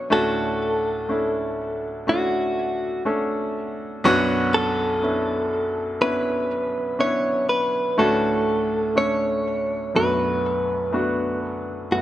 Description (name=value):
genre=pop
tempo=61 BPM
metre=4/4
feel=straight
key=B minor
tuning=A4 = 438 Hz
part: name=direct-recorded clean electric guitar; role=melody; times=0.0-12.0 s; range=F#4 to C#5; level=-23 LUFS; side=equal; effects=dub echo
part: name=clear baby grand piano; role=accompaniment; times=0.0-12.0 s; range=B1 to A4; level=-23 LUFS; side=equal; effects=none
room=moderate echo chamber reverb, RT60 2.8 s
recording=echo-heavy mix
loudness=-20 LUFS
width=side -13 dB against mid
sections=0.0-11.9 A section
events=none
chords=0.1 Dmaj7; 4.0 Bmadd9; 8.0 Dmaj7; 9.9 Bm7